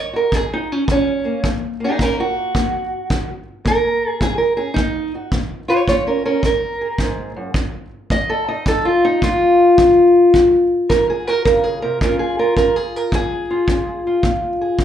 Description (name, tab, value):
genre	acoustic country blues, solo or duo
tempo	108 BPM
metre	4/4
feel	swing 65% on 8ths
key	Bb minor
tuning	A4 = 440 Hz
part	fingerpicked steel-string acoustic guitar	melody	0.0-14.8 s	F2 to Eb5	-15 LUFS	equal	plate reverb
part	kick drum	drums	0.3-14.8 s	none	-22 LUFS	equal	none
room	moderate club ambience, RT60 0.5 s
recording	live gig heard through the venue's PA, club reverb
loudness	-15 LUFS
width	side -10 dB against mid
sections	0.0-14.8 A section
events	steel-string acoustic guitar solo 0.0-14.8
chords	0.0 Ebm7; 5.3 Bbm7; 7.6 F7; 9.8 Ebm; 12.0 Bbm7